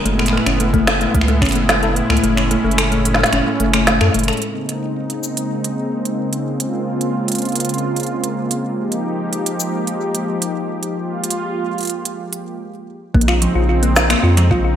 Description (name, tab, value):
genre	IDM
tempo	110 BPM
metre	4/4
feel	straight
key	Bb minor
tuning	A4 = 443 Hz
part	warm analog pad	sustained chords	0.0-14.8 s	A2 to G4	-21 LUFS	right 1 dB	chorus, vintage 12-bit sampler grit, sidechain pumping
part	thumb-piano-like synth pluck	arpeggios	0.1-4.4, 13.1-14.8 s	F3 to Bb4	-19 LUFS	left 3 dB	chorus, digital delay
part	round analog bass	bass	0.1-4.3, 13.1-14.8 s	Gb1 to Gb2	-18 LUFS	equal	none
part	organic electronic drum kit	drums	0.1-14.5 s	cabasa, finger snaps, hi-hat, snare drum	-19 LUFS	equal	overdrive, studio ambience, gated reverb, digital delay
part	electronic kick drum	drums	0.7-1.5, 13.1-14.6 s	none	-18 LUFS	equal	overdrive, studio ambience
room	moderate plate reverb, RT60 1.5 s, digital ambience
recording	bright 1980s-style digital production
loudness	-15 LUFS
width	side -9 dB against mid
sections	0.0-4.4 A section; 4.4-13.1 B section; 13.1-14.8 C section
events	kick drops out 2.2-4.4; filter sweep on analog synth pad 4.4-13.1; stop 12.6-13.1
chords	0.1 Gbm11; 4.4 Bbm11; 8.8 Fm11; 13.1 Bbm11